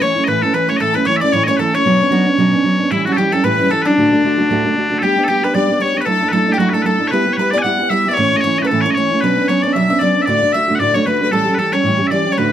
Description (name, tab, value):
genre	celtic folk, Celtic reel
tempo	228 BPM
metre	4/4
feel	swing 56% on 8ths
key	unclear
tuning	A4 = 441 Hz
part	loud bright bagpipes	melody	0.0-12.5 s	D4 to G#5	-17 LUFS	left 2 dB	none
part	clear fiddle	second line	0.0-12.5 s	D4 to F#5	-21 LUFS	left 8 dB	none
part	mandolin	second line	0.0-12.5 s	D4 to F#5	-24 LUFS	right 2 dB	none
part	fingerpicked steel-string acoustic guitar	accompaniment	0.0-12.5 s	D2 to G4	-16 LUFS	right 3 dB	none
room	moderate studio ambience, RT60 0.5 s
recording	dark, warm production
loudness	-13 LUFS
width	side -10 dB against mid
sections	0.0-5.0 A section; 5.0-12.5 B section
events	none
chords	0.0 A; 1.9 Bmadd9; 2.9 A7; 4.0 D; 5.0 G; 6.1 Dadd9/F#; 7.1 Em/G; 8.2 A; 9.2 Bmadd9; 10.3 D; 11.3 A7